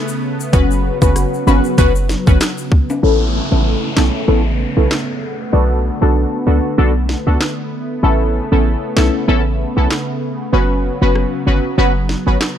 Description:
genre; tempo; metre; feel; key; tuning
dancehall; 96 BPM; 4/4; swing 56% on 16ths; unclear; A4 = 440 Hz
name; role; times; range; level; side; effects
warm analog pad; sustained chords; 0.0-12.6 s; C#3 to B3; -22 LUFS; equal; chorus, sidechain pumping, low-pass filter
tube shaker and timbales; percussion; 0.1-3.0 s; none; -24 LUFS; left 4 dB; none
synth brass stab; accompaniment; 0.5-12.4 s; B3 to B4; -18 LUFS; left 1 dB; chorus, phaser, low-pass filter
short 808-style bass; bass; 0.5-12.4 s; F#1 to C#2; -15 LUFS; equal; none
island pop drum kit; drums; 0.5-12.6 s; handclaps, hi-hat, kick drum, rim click, snare drum; -16 LUFS; equal; overdrive
downlifter; sound effects; 3.0-8.0 s; none; -27 LUFS; equal; none
room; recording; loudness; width
digital ambience; dark, warm production; -13 LUFS; side -10 dB against mid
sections
0.0-3.0 A section; 3.0-12.6 B section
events
filter sweep 3.0-12.6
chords
0.0 Aadd9; 0.5 F#sus4; 3.0 Aadd9; 5.5 Bm7; 8.0 Aadd9; 10.5 F#sus4

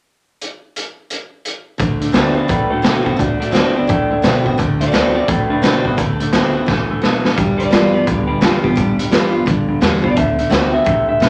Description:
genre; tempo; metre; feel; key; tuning
rockabilly; 172 BPM; 4/4; swing 62% on 8ths; D mixolydian; A4 = 440 Hz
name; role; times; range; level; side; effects
raw garage drum kit; drums; 0.4-11.3 s; hi-hat, kick drum, snare drum; -20 LUFS; equal; none
picked steel-string acoustic guitar; accompaniment; 1.8-11.3 s; G2 to F#4; -21 LUFS; equal; none
electric guitar through a small old amp; riff; 1.8-11.3 s; G2 to B3; -23 LUFS; equal; none
upright bass; bass; 1.8-11.3 s; G1 to B2; -29 LUFS; equal; none
electric guitar through a small old amp; melody; 2.1-11.3 s; D4 to F#5; -22 LUFS; equal; spring reverb
room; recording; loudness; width
moderate large studio reverb, RT60 1.1 s; none; -15 LUFS; mono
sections
0.4-1.8 A section; 1.8-11.3 B section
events
drum fill 6.7-7.4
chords
0.4 N.C.; 1.8 D7; 7.4 G7; 10.2 D7

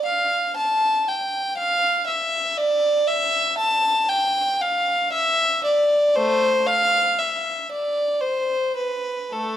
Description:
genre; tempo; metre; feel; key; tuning
classical, baroque-style suite movement for unaccompanied violin; 58 BPM; 3/4; uneven beats, rubato; A minor; A4 = 441 Hz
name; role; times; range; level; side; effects
warm violin; solo; 0.1-9.6 s; A3 to A5; -19 LUFS; equal; none
room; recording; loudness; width
moderate recital hall reverb, RT60 1.4 s; dark, warm production; -19 LUFS; side -11 dB against mid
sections
0.0-9.6 A section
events
none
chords
none

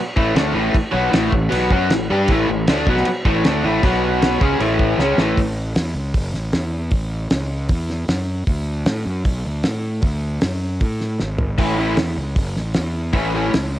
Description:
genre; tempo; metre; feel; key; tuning
garage rock duo or trio; 155 BPM; 4/4; straight; A major; A4 = 439 Hz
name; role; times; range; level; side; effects
raw garage guitar; riff; 0.2-5.4, 11.6-13.5 s; A2 to G4; -18 LUFS; equal; overdrive, cassette tape
fuzz fingered electric bass; bass; 0.2-13.8 s; F#1 to A2; -23 LUFS; equal; overdrive
cloth-damped thuddy drum kit; drums; 0.2-13.6 s; crash cymbal, hi-hat, kick drum, snare drum, splash cymbal, toms; -21 LUFS; equal; cassette tape
room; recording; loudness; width
light reverb, small room ambience; home recording on cassette; -17 LUFS; side -13 dB against mid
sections
0.0-5.4 A section; 5.4-13.8 B section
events
drum fill 5.0-5.4, 11.2-11.6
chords
0.0 A5; 3.8 B5; 4.4 A; 8.5 D; 11.6 A

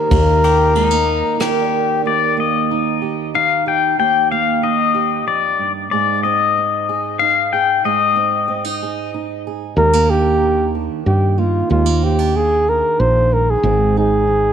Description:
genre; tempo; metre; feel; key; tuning
acoustic folk-pop ballad; 93 BPM; 3/4; straight; Eb major; A4 = 438 Hz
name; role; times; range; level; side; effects
mellow flugelhorn; melody; 0.0-1.7, 9.8-14.5 s; F4 to C5; -16 LUFS; left 1 dB; none
fingerpicked steel-string acoustic guitar; accompaniment; 0.0-14.5 s; Eb2 to Ab4; -22 LUFS; right 11 dB; none
vibraphone with soft mallets; arpeggios; 0.0-2.5 s; G4 to D5; -24 LUFS; right 9 dB; none
woody fretless electric bass; bass; 0.1-1.2, 9.8-14.5 s; Ab1 to G2; -17 LUFS; equal; none
soft brush drum kit; drums; 0.1-1.6 s; kick drum, ride cymbal, rim click; -23 LUFS; right 1 dB; none
pedal steel guitar; second line; 0.4-9.4 s; Eb4 to G5; -16 LUFS; left 9 dB; none
room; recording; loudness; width
moderate echo chamber reverb, RT60 2.2 s; 1960s-style stereo with parts hard left and right; -14 LUFS; side -8 dB against mid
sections
0.0-2.0 A section; 2.0-9.8 B section; 9.8-14.5 C section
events
pedal steel guitar solo 2.0-9.8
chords
0.1 Ebmaj7; 5.9 Ab; 9.8 Ebmaj7; 13.6 Ab

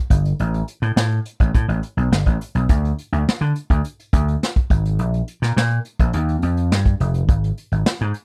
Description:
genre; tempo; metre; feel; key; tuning
polished 1980s jazz-funk pop; 104 BPM; 4/4; straight; unclear; A4 = 440 Hz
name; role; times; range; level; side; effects
vintage slap bass; bass; 0.1-8.1 s; E#1 to D3; -21 LUFS; equal; none
jazz brush drum kit; drums; 0.1-8.2 s; hi-hat, kick drum, snare drum; -20 LUFS; equal; none
room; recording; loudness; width
little or no reverb; dry, close 1970s-style studio recording; -20 LUFS; mono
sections
0.0-8.2 A section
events
none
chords
none

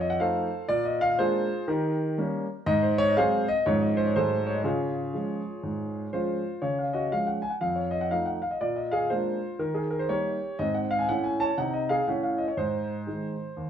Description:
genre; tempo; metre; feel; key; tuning
jazz, stride piano; 121 BPM; 4/4; swing 63% on 8ths; Db major; A4 = 444 Hz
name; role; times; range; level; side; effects
clear grand piano; solo; 0.0-13.7 s; Eb2 to A5; -25 LUFS; equal; none
room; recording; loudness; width
wet club reverb, RT60 0.9 s; heard from further back in the room; -25 LUFS; side -9 dB against mid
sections
0.0-6.6 A section; 6.6-13.7 A section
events
none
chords
0.0 F7; 0.7 Bb7; 1.7 Eb7; 2.7 Ab7; 3.6 Db/Ab; 4.1 Ab7b9; 4.6 Db; 7.6 F7; 8.6 Bb7; 9.6 Eb7; 10.6 Ab

